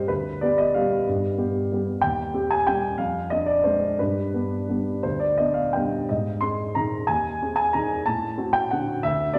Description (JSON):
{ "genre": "classical, piano waltz", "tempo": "167-196 BPM", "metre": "3/4", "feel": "rubato", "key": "unclear", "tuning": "A4 = 442 Hz", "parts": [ { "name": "dark baby grand piano", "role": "solo", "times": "0.0-9.4 s", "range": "D2 to C6", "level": "-24 LUFS", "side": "equal", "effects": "none" } ], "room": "wet recital hall reverb, RT60 1.6 s", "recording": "none", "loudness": "-24 LUFS", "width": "mono", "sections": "0.0-9.4 A section", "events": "none", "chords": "0.1 G7/D; 2.0 Cm/Eb; 3.0 Dm7b5/F; 4.0 G; 6.1 Ab; 8.1 D7/A" }